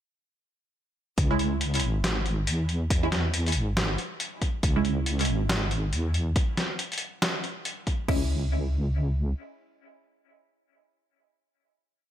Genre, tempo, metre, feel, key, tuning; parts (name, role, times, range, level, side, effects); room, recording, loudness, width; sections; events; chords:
deep dubstep; 139 BPM; 4/4; swing 60% on 16ths, half-time; C# minor; A4 = 440 Hz
deep soft wobble bass; bass; 1.2-9.3 s; G#1 to E2; -26 LUFS; equal; chorus, tube saturation
deep house drum kit; drums; 1.2-8.2 s; crash cymbal, kick drum, toms; -26 LUFS; equal; overdrive
trip hop sampler-style drum kit; drums; 1.2-8.0 s; hi-hat, snare drum; -29 LUFS; left 1 dB
filtered dub chord stab; stabs; 1.3-12.1 s; G#3 to E4; -32 LUFS; right 3 dB; phaser, lush chorus, dub echo
digital ambience; -25 LUFS; side -11 dB against mid
1.2-8.1 drop; 8.1-11.5 final chord
drop 1.2-8.1
1.2 C#m